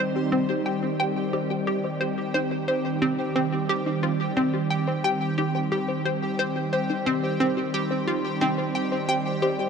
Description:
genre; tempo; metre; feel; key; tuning
ambient, sequencer-driven space music; 89 BPM; 4/4; straight; C minor; A4 = 439 Hz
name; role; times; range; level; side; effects
phased analog pad; sustained chords; 0.0-9.7 s; Eb3 to C5; -26 LUFS; right 1 dB; phaser, chorus
soft round pluck; arpeggios; 0.0-9.7 s; Eb4 to C5; -33 LUFS; left 2 dB; chorus, auto-pan, tape echo
hollow square pluck; riff; 0.0-9.7 s; C4 to G5; -26 LUFS; equal; wide subtle chorus, tape echo
pulsing gated texture; texture; 0.0-9.7 s; G4 to C6; -35 LUFS; left 1 dB; chorus, built-in reverb
room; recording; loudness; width
wet huge ambient reverb, RT60 7.9 s; cassette tape; -23 LUFS; side -6 dB against mid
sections
0.0-9.7 A section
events
none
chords
0.0 Cm

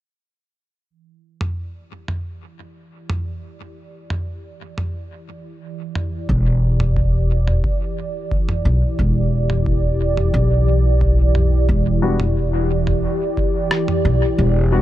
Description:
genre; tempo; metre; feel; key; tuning
ambient dub; 89 BPM; 4/4; straight; E minor; A4 = 440 Hz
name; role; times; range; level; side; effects
warm analog pad; sustained chords; 0.9-14.8 s; E3 to D5; -24 LUFS; right 1 dB; chorus
lo-fi sampler-style drum kit; drums; 1.4-14.0 s; rim click, toms; -26 LUFS; equal; dub echo
upright bass; bass; 6.3-14.8 s; E1 to B1; -16 LUFS; equal; none
electronic kick drum; drums; 6.3-13.5 s; none; -23 LUFS; equal; none
dark upright piano; stabs; 12.0-14.8 s; G3 to F#4; -25 LUFS; left 4 dB; low-pass filter, dub echo
room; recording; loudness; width
small room ambience; dark, warm production; -16 LUFS; side -14 dB against mid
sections
0.9-11.7 A section; 11.7-14.8 B section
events
filter sweep on analog synth pad 0.9-11.7; filter sweep on upright piano 11.7-14.8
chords
0.9 Em7

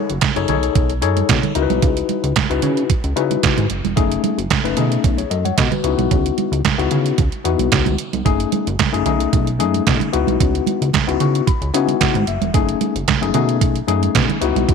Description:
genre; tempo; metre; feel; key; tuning
early-eighties boogie funk; 112 BPM; 4/4; straight; unclear; A4 = 444 Hz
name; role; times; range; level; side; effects
tine electric piano; accompaniment; 0.0-14.7 s; A3 to C#6; -20 LUFS; left 14 dB; overdrive, fast stereo tremolo
chorused synth bass; bass; 0.1-14.7 s; E1 to C#3; -21 LUFS; equal; none
detuned 8-bit digital drum machine; drums; 0.1-14.7 s; handclaps, hi-hat, kick drum, snare drum; -19 LUFS; right 5 dB; none
congas; percussion; 0.2-14.7 s; none; -25 LUFS; right 12 dB; none
room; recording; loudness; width
light reverb; 1960s-style stereo with parts hard left and right; -15 LUFS; side -6 dB against mid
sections
0.0-14.7 A section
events
tine electric piano fill 10.9-12.5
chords
0.5 B13; 1.6 C#m11; 4.0 F#m69; 4.8 B13; 5.8 C#m11; 8.3 F#m69; 9.1 B13; 10.1 C#m11; 12.5 F#m69; 13.3 B13

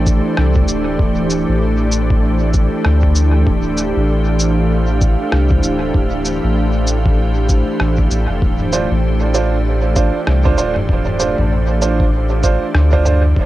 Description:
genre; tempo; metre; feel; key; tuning
ambient dub; 97 BPM; 4/4; swing 59% on 16ths; D minor; A4 = 442 Hz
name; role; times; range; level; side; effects
soft additive organ-like pad; sustained chords; 0.0-13.5 s; E3 to C5; -19 LUFS; equal; ensemble chorus, built-in reverb, cassette tape, plate reverb
soft dub sub bass; bass; 0.0-13.5 s; D1 to D2; -16 LUFS; equal; tube saturation
wind-like tuned noise texture; texture; 0.0-13.5 s; D4 to F5; -28 LUFS; right 1 dB; built-in reverb, cassette tape, plate reverb
electronic kick drum; drums; 0.1-13.5 s; none; -16 LUFS; equal; cassette tape
lo-fi sampler-style drum kit; drums; 0.1-13.2 s; rim click, shaker, toms; -24 LUFS; equal; cassette tape, dub echo
bright upright piano; stabs; 8.7-13.2 s; D4 to C5; -19 LUFS; right 6 dB; cassette tape, dub echo, plate reverb
room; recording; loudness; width
light reverb; home recording on cassette; -13 LUFS; side -15 dB against mid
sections
0.0-13.5 A section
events
none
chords
0.0 Dm7

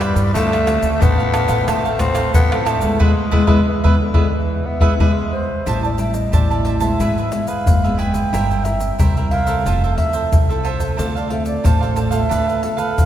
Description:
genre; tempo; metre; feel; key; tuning
samba and choro; 90 BPM; 4/4; straight; A minor; A4 = 442 Hz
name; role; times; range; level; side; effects
growling tenor saxophone; second line; 0.0-5.6 s; D3 to C4; -21 LUFS; left 2 dB; none
cavaquinho; accompaniment; 0.0-13.1 s; D4 to A5; -24 LUFS; right 6 dB; none
nylon-string guitar; accompaniment; 0.0-13.1 s; G2 to Bb4; -23 LUFS; left 2 dB; none
upright bass; bass; 0.0-13.1 s; F1 to G2; -22 LUFS; equal; none
pandeiro, tamborim, tube shaker and surdo; percussion; 0.0-13.1 s; none; -19 LUFS; equal; none
mellow baroque flute; melody; 4.7-13.1 s; C5 to G5; -23 LUFS; right 2 dB; none
room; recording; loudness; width
wet church reverb, RT60 2.9 s; recorded in a church or concert hall; -15 LUFS; side -11 dB against mid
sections
0.0-5.7 A section; 5.7-13.1 B section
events
band accent 3.0-5.7; drum fill 5.2-5.7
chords
0.3 Dm7; 3.0 E; 5.7 Am7; 7.0 E/G#; 8.3 C7/G; 9.7 Fmaj7; 11.0 Dm7; 12.3 Bm7b5/D

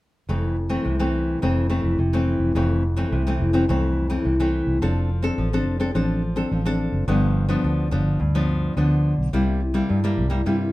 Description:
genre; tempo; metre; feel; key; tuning
samba and choro; 106 BPM; 4/4; straight; F major; A4 = 441 Hz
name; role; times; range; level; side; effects
nylon-string guitar; accompaniment; 0.3-10.7 s; F2 to A4; -22 LUFS; left 1 dB; none
vintage muted fingered electric bass; bass; 0.3-10.7 s; F1 to G2; -23 LUFS; equal; none
room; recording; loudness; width
moderate studio reverb, RT60 0.6 s; minimal, uncompressed stereo recording; -19 LUFS; side -18 dB against mid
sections
0.3-2.6 A section; 2.6-10.7 B section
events
none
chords
0.3 Fmaj7; 4.8 Dm7/F; 7.1 G7; 9.3 C7

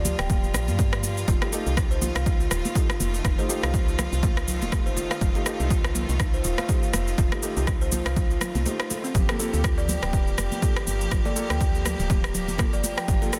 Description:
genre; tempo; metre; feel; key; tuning
afro house; 122 BPM; 4/4; swing 57% on 16ths; unclear; A4 = 440 Hz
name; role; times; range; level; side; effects
clear chamber string section; sustained chords; 0.0-13.4 s; Eb3 to G4; -37 LUFS; equal; sidechain pumping
kalimba; arpeggios; 0.0-13.3 s; C4 to G5; -35 LUFS; equal; sidechain pumping, dub echo
woody FM bass; bass; 0.0-13.2 s; D1 to G2; -30 LUFS; equal; tube saturation, sidechain pumping
electronic cabasa and rim click; drums; 0.1-13.4 s; none; -33 LUFS; equal; overdrive
congas; percussion; 0.1-13.3 s; none; -36 LUFS; equal; none
electronic kick drum; drums; 0.3-13.2 s; none; -26 LUFS; equal; overdrive
felt-muted upright piano; stabs; 1.4-13.4 s; A3 to A4; -37 LUFS; equal; vintage 12-bit sampler grit, sidechain pumping, dub echo
room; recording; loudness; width
light reverb, studio ambience; dense, heavily limited modern master; -24 LUFS; mono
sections
0.0-13.4 A section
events
none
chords
0.0 Gm7; 1.3 F7; 9.2 Gm7

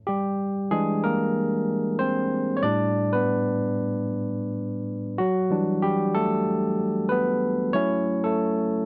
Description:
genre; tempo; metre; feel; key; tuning
R&B; 94 BPM; 4/4; swing 58% on 16ths; unclear; A4 = 441 Hz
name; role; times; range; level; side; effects
barky tine electric piano; solo; 0.1-8.9 s; A2 to D5; -25 LUFS; equal; overdrive
room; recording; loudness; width
little or no reverb; dry, close 1970s-style studio recording; -25 LUFS; mono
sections
0.0-8.9 A section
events
tine electric piano solo 0.0-8.9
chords
0.0 E7alt; 2.6 A9sus4; 5.2 Em7; 7.7 F#m7

